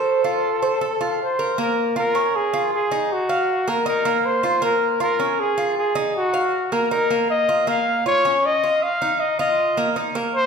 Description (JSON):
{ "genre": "latin", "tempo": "158 BPM", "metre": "4/4", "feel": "straight", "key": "Bb minor", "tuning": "A4 = 440 Hz", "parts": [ { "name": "breathy trumpet", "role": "melody", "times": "0.0-10.5 s", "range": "Gb4 to F5", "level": "-20 LUFS", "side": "left 1 dB", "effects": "none" }, { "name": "Cuban tres", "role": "arpeggios", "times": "0.0-10.5 s", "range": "Bb3 to F5", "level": "-23 LUFS", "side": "right 2 dB", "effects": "none" } ], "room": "wet recital hall reverb, RT60 1.3 s", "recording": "recorded in a church or concert hall", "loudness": "-18 LUFS", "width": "side -6 dB against mid", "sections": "0.0-1.6 A section; 1.6-10.5 B section", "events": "none", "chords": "0.1 F; 1.6 Bbm7; 3.1 Ebmadd9; 4.6 Bbm7; 6.2 Ebmadd9; 7.7 Bbm; 9.2 Ebsus2", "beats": "| 0.06 0.44 0.82 1.20 | 1.58 1.96 2.34 2.73 | 3.11 3.49 3.87 4.25 | 4.63 5.01 5.39 5.77 | 6.15 6.54 6.92 7.30 | 7.68 8.06 8.44 8.82 | 9.20 9.58 9.96 10.34" }